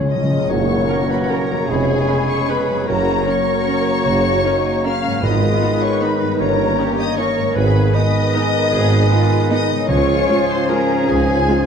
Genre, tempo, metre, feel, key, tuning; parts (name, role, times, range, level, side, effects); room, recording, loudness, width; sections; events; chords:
classical, orchestral ballroom waltz; 153 BPM; 3/4; uneven beats, rubato; F# major; A4 = 440 Hz
clear oboe; second line; 0.0-11.7 s; Ab4 to C#5; -30 LUFS; right 2 dB
rich chamber violin section; second line; 0.0-11.7 s; G#4 to E#5; -26 LUFS; left 6 dB
rich studio viola section; accompaniment; 0.0-11.6 s; Ab3 to B4; -28 LUFS; right 2 dB
concert harp; arpeggios; 0.0-11.7 s; E#2 to Ab5; -26 LUFS; left 6 dB
timpani; percussion; 0.0-0.4, 5.2-10.4 s; G#2 to Db3; -24 LUFS; equal
rich chamber violin section; melody; 0.1-11.7 s; Ab5 to E#6; -27 LUFS; left 5 dB
dark clarinet; second line; 0.1-11.7 s; G#4 to E#5; -24 LUFS; left 2 dB
mellow hollow large flute ensemble; second line; 0.5-11.7 s; F#5 to B5; -28 LUFS; left 1 dB
mellow bassoon; accompaniment; 0.5-11.7 s; D#3 to A#3; -26 LUFS; right 1 dB
dark French horn section; sustained chords; 0.5-11.7 s; G#3 to C#4; -25 LUFS; left 3 dB
mellow trombone section; sustained chords; 0.5-11.7 s; G2 to G#3; -26 LUFS; right 3 dB
warm chamber double bass section; bass; 0.5-11.4 s; E#1 to Db2; -21 LUFS; right 2 dB
warm tuba; bass; 0.5-11.4 s; E#1 to Db2; -25 LUFS; right 4 dB
tam-tam; percussion; 0.5-2.0 s; -32 LUFS; left 2 dB
warm chamber cello section; bass; 0.9-11.7 s; C#4 to B4; -26 LUFS; right 5 dB
wet scoring stage reverb, RT60 1.7 s; dark, warm production; -14 LUFS; side -7 dB against mid
0.5-11.7 A section
timpani fill 0.0-0.5; band accent 0.5-0.9
0.5 F#; 1.7 C#7/E#; 2.9 F#; 5.2 G#m; 6.4 D#7/G; 7.6 G#m; 9.9 Db